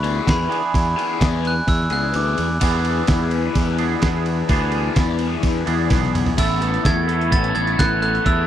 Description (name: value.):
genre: indie rock.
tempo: 128 BPM.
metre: 4/4.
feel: straight.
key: unclear.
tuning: A4 = 440 Hz.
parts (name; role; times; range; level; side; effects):
glockenspiel with hard plastic mallets; melody; 0.0-2.6, 6.4-8.5 s; B5 to A6; -24 LUFS; right 1 dB; slapback echo.
overdriven combo organ; sustained chords; 0.0-6.3 s; G#4 to B5; -33 LUFS; left 2 dB; none.
raw garage guitar; riff; 0.0-8.5 s; E3 to B4; -24 LUFS; left 14 dB; overdrive, phaser.
twangy electric guitar; riff; 0.0-8.5 s; E3 to A4; -26 LUFS; right 12 dB; analog chorus, slapback echo.
growling fingered electric bass; bass; 0.0-8.5 s; A1 to E2; -22 LUFS; equal; overdrive.
dusty soul sampler-style drum kit; drums; 0.0-8.4 s; crash cymbal, hi-hat, kick drum, ride cymbal, snare drum, toms; -22 LUFS; equal; none.
room: little or no reverb.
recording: dry, close 1970s-style studio recording.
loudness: -17 LUFS.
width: side -11 dB against mid.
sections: 0.0-2.6 A section; 2.6-6.4 B section; 6.4-8.5 C section.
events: glockenspiel solo 0.0-2.6; kick and snare drop out 2.1-2.6; drum fill 5.9-6.4.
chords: 0.0 E7; 6.4 Asus2.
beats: 0.27 | 0.74 1.21 1.68 2.15 | 2.62 3.09 3.56 4.03 | 4.50 4.97 5.44 5.91 | 6.38 6.85 7.32 7.79 | 8.26.